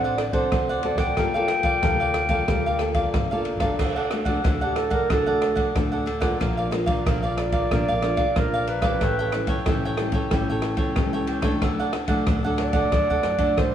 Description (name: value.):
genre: samba and choro.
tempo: 92 BPM.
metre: 4/4.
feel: straight.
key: unclear.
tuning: A4 = 439 Hz.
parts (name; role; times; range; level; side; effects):
cavaquinho; accompaniment; 0.0-13.7 s; D4 to G5; -28 LUFS; right 1 dB; none.
nylon-string guitar; accompaniment; 0.0-13.7 s; A2 to A4; -28 LUFS; left 2 dB; none.
upright bass; bass; 0.0-13.7 s; G1 to F#2; -31 LUFS; equal; none.
mellow clarinet; melody; 0.2-13.7 s; G4 to G5; -25 LUFS; right 2 dB; none.
open jazz drum kit; drums; 0.2-13.7 s; crash cymbal, kick drum, ride cymbal, rim click; -25 LUFS; equal; none.
room: moderate lush hall reverb, RT60 2.6 s.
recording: rough home demo mix, small room ambience.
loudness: -20 LUFS.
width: side -10 dB against mid.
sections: 0.0-3.8 A section; 3.8-13.7 B section.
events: clarinet solo 3.8-13.7.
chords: 0.0 D7; 1.2 Gm9; 3.8 D; 6.4 Bb; 9.0 A7; 11.6 D.